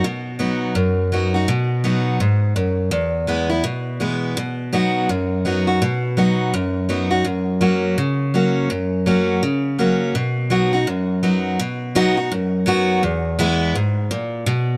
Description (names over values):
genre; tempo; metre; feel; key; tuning
country; 166 BPM; 4/4; swing 61% on 8ths; B major; A4 = 440 Hz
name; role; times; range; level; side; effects
picked steel-string acoustic guitar; solo; 0.0-14.8 s; E2 to F#4; -20 LUFS; equal; none
room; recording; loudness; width
light reverb; dark, warm production; -20 LUFS; mono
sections
0.0-11.6 A section; 11.6-14.8 B section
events
none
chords
0.0 B; 2.9 E; 4.4 B; 7.3 F#; 10.2 B; 13.0 E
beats
| 0.04 0.40 0.76 1.12 | 1.48 1.84 2.20 2.56 | 2.92 3.29 3.65 4.01 | 4.37 4.73 5.09 5.45 | 5.82 6.18 6.54 6.90 | 7.26 7.62 7.98 8.34 | 8.71 9.07 9.43 9.79 | 10.15 10.51 10.87 11.23 | 11.59 11.95 12.31 12.68 | 13.04 13.40 13.76 14.12 | 14.48